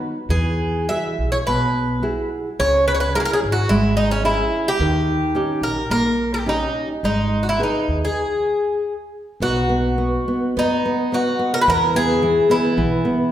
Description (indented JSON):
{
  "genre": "fado-style ballad",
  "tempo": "93-112 BPM",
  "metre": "4/4",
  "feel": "rubato",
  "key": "G# minor, B major from 9.4 s",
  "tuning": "A4 = 440 Hz",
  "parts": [
    { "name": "nylon-string guitar", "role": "accompaniment", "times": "0.0-13.3 s", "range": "B2 to B4", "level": "-22 LUFS", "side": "right 1 dB", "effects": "none" },
    { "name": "Irish bouzouki", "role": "melody", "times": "0.3-13.3 s", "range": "C#4 to E5", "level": "-20 LUFS", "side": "left 1 dB", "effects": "none" },
    { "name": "upright bass", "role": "bass", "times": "0.3-13.0 s", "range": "G#1 to F#2", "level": "-25 LUFS", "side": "equal", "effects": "none" },
    { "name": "picked twelve-string acoustic guitar", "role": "second line", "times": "9.4-13.3 s", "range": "B3 to G#4", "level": "-28 LUFS", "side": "right 3 dB", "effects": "none" }
  ],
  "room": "wet recital hall reverb, RT60 1.4 s",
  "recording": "recorded in a church or concert hall",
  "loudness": "-17 LUFS",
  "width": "side -11 dB against mid",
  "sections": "0.0-9.4 A section; 9.4-13.3 B section",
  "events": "stop 8.2-9.4",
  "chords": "0.3 Eadd9; 2.6 C#m; 4.8 D#7; 7.0 G#m; 9.4 B; 11.7 E"
}